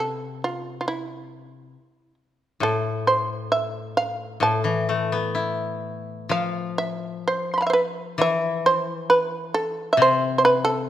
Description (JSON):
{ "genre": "japanese traditional, Japanese chamber music", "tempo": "61-70 BPM", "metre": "2/4", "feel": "rubato", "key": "E miyako bushi", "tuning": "A4 = 441 Hz", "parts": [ { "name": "shamisen", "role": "melody", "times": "0.0-10.9 s", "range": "E4 to C6", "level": "-21 LUFS", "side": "right 2 dB", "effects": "none" }, { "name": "koto", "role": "accompaniment", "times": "0.0-10.9 s", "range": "A2 to E4", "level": "-27 LUFS", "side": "left 4 dB", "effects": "none" } ], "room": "moderate recital hall reverb, RT60 1.8 s", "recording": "none", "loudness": "-21 LUFS", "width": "side -12 dB against mid", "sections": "0.0-10.9 A section", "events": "none", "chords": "none" }